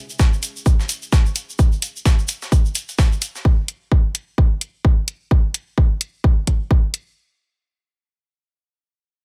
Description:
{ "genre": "minimal techno", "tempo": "129 BPM", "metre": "4/4", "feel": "swing 58% on 16ths", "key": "none", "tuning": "none", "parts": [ { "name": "tube shaker", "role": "percussion", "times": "0.1-3.4 s", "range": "none", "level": "-33 LUFS", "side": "equal", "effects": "none" }, { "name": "breakbeat sampler-style drum kit", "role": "drums", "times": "0.2-3.4 s", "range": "hi-hat, snare drum", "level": "-32 LUFS", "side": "equal", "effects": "high-pass filter on hats, high-pass filter on snare" }, { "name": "electronic kick drum", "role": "drums", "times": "0.2-6.8 s", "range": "none", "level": "-17 LUFS", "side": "equal", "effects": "none" }, { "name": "electronic hi-hat", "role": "drums", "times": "0.4-7.0 s", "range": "none", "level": "-23 LUFS", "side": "equal", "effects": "none" } ], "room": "digital ambience", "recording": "none", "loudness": "-19 LUFS", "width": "mono", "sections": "0.0-7.2 A section", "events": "none", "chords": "none" }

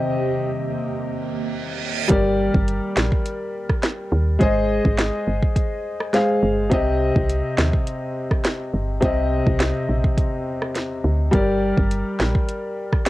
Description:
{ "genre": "dancehall", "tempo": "104 BPM", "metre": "4/4", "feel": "straight", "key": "C minor", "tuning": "A4 = 439 Hz", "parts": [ { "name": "warm grand piano", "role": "accompaniment", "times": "0.0-13.1 s", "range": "C3 to F5", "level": "-22 LUFS", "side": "left 1 dB", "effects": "none" }, { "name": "ethereal airy pad", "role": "sustained chords", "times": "0.0-2.1 s", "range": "Eb3 to G4", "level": "-31 LUFS", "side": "right 5 dB", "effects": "ensemble chorus, built-in reverb, sidechain pumping" }, { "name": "reverse cymbal", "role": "sound effects", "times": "1.5-2.1 s", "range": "none", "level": "-27 LUFS", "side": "right 8 dB", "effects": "none" }, { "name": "woody FM bass", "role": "bass", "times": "2.1-12.3 s", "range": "G1 to Eb2", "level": "-22 LUFS", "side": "equal", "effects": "none" }, { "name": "afro-pop drum kit", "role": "drums", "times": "2.1-13.1 s", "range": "hi-hat, kick drum, rim click, snare drum", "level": "-20 LUFS", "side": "equal", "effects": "none" } ], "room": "little or no reverb", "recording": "home recording on cassette", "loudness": "-19 LUFS", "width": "side -16 dB against mid", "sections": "0.0-2.1 A section; 2.1-13.1 B section", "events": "reverse cymbal 1.5-2.1", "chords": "0.0 Cm; 2.1 Gm; 4.4 Ab; 6.7 Cm; 11.3 Gm" }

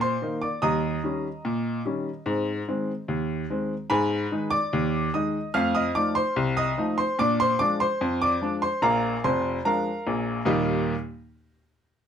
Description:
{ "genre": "ragtime piano", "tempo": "73 BPM", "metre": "2/4", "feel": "straight", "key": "Eb major", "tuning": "A4 = 440 Hz", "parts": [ { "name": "clear upright piano", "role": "solo", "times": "0.0-10.9 s", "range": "F1 to F6", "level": "-23 LUFS", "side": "equal", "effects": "none" } ], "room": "moderate club reverb, RT60 0.5 s", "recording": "none", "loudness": "-23 LUFS", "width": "side -8 dB against mid", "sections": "0.0-10.5 A section; 10.5-12.1 B section", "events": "none", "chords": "0.0 Eb5; 0.6 Eb7; 2.3 Ab; 3.9 Abm; 5.5 F7; 7.2 Bb7; 10.5 Eb" }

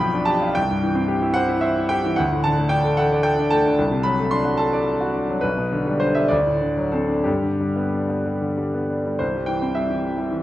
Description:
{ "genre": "classical, romantic character piece for solo piano", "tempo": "58-76 BPM (dotted quarters)", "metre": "6/8", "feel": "rubato", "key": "G major", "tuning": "A4 = 440 Hz", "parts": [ { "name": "clear grand piano", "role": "solo", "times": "0.0-10.4 s", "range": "B1 to C6", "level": "-19 LUFS", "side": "equal", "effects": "none" } ], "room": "wet recital hall reverb, RT60 1.4 s", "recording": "none", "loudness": "-19 LUFS", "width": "side -14 dB against mid", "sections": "0.0-9.2 A section; 9.2-10.4 B section", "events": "none", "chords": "0.0 G7/B; 0.5 C; 2.2 D5; 3.8 D7/C; 5.4 G/B; 6.3 D7; 7.3 G; 9.2 C" }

